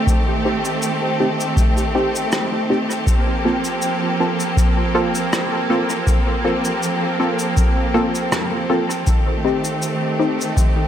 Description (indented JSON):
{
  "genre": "ambient dub",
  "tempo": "80 BPM",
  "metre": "4/4",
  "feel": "swing 53% on 16ths",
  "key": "G minor",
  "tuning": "A4 = 441 Hz",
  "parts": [
    { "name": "bright studio string section", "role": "sustained chords", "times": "0.0-10.9 s", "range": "Eb3 to A4", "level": "-20 LUFS", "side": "right 1 dB", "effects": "none" },
    { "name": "cabasa and rim click", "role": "drums", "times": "0.1-10.7 s", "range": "none", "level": "-26 LUFS", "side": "equal", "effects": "dub echo" },
    { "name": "electronic kick drum", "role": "drums", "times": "0.1-10.7 s", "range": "none", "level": "-17 LUFS", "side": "equal", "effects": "none" },
    { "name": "filtered dub chord stab", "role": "stabs", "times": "0.5-10.4 s", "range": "Bb3 to A4", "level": "-22 LUFS", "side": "equal", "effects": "chorus, dub echo" }
  ],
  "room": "light reverb, studio reverb",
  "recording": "none",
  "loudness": "-16 LUFS",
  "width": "side -10 dB against mid",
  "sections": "0.0-10.9 A section",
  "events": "none",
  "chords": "0.0 Am7b5; 3.1 Gm11; 9.1 Am7b5"
}